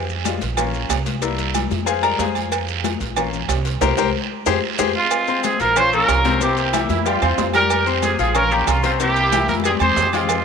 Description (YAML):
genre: latin, salsa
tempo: 185 BPM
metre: 4/4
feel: straight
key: F harmonic minor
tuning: A4 = 440 Hz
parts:
  - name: bright baby grand piano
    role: accompaniment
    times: 0.0-10.4 s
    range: C3 to Db6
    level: -22 LUFS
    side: left 9 dB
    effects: none
  - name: upright bass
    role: bass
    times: 0.0-10.4 s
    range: Bb1 to F2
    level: -24 LUFS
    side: right 2 dB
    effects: none
  - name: congas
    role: percussion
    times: 0.1-10.4 s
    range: none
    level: -28 LUFS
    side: left 11 dB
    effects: none
  - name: maracas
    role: percussion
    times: 0.1-10.4 s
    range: none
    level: -33 LUFS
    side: left 13 dB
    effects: none
  - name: cowbell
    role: percussion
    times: 0.2-10.4 s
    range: none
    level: -31 LUFS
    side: left 10 dB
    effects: none
  - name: guiro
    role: percussion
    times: 0.3-10.4 s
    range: none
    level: -30 LUFS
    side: right 17 dB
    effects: none
  - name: timbales and agogo bells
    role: percussion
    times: 0.3-10.4 s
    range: none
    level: -26 LUFS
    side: right 14 dB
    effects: none
  - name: warm horn section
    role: melody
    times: 5.0-10.4 s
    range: Ab3 to C5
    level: -18 LUFS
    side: right 2 dB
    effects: none
  - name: bright trombone section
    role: second line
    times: 6.9-7.5 s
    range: E4 to F4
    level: -27 LUFS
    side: right 12 dB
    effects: slapback echo
room: moderate plate reverb, RT60 3.5 s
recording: 1960s-style stereo with parts hard left and right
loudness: -16 LUFS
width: side -6 dB against mid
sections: 0.0-5.1 A section; 5.1-10.4 B section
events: grand piano solo 0.0-5.1; band accent 3.8-5.1; drum fill 4.1-5.1, 9.5-10.3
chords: 0.0 Fmadd9; 0.6 Bbm; 1.2 C7; 1.9 Fmadd9; 3.2 Bbm; 3.8 C5; 4.5 Fmadd9; 5.1 Fm; 5.8 Bbm; 6.4 C7; 7.1 Fsus2; 8.4 Bbm; 9.0 C7; 9.6 Fmadd9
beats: 0.26 0.58 0.90 | 1.23 1.55 1.87 2.20 | 2.52 2.85 3.17 3.49 | 3.82 4.14 4.46 4.79 | 5.11 5.44 5.76 6.08 | 6.41 6.73 7.06 7.38 | 7.70 8.03 8.35 8.68 | 9.00 9.32 9.65 9.97 | 10.29